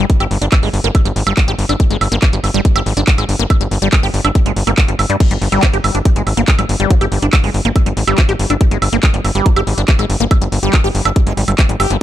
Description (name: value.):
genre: psychedelic trance.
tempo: 141 BPM.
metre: 4/4.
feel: straight.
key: G phrygian.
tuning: A4 = 440 Hz.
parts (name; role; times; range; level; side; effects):
liquid acid bass; riff; 0.0-12.0 s; F3 to G4; -19 LUFS; moving between left 6 dB and right 5 dB; phaser, auto-pan, sidechain pumping, ping-pong delay.
tight sequencer bass; bass; 0.0-12.0 s; G1 to G2; -16 LUFS; equal; none.
drum and bass drum kit; drums; 0.1-12.0 s; crash cymbal, handclaps, hi-hat, woodblock; -20 LUFS; right 3 dB; none.
electronic kick drum; drums; 0.1-11.7 s; none; -13 LUFS; equal; none.
room: little or no reverb.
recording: dark, warm production.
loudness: -11 LUFS.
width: side -12 dB against mid.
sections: 0.0-12.0 A section.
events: none.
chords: 0.0 G5.